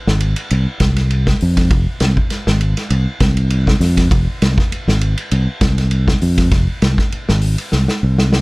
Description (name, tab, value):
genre	afrobeat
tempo	100 BPM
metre	4/4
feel	swing 55% on 16ths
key	F minor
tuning	A4 = 439 Hz
part	fingered electric bass	bass	0.1-8.4 s	F1 to F2	-14 LUFS	equal	none
part	vintage drum kit	drums	0.1-8.4 s	hi-hat, kick drum, ride cymbal, snare drum	-17 LUFS	equal	none
room	little or no reverb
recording	none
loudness	-13 LUFS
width	side -25 dB against mid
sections	0.0-8.4 A section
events	drum fill 7.7-8.4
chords	none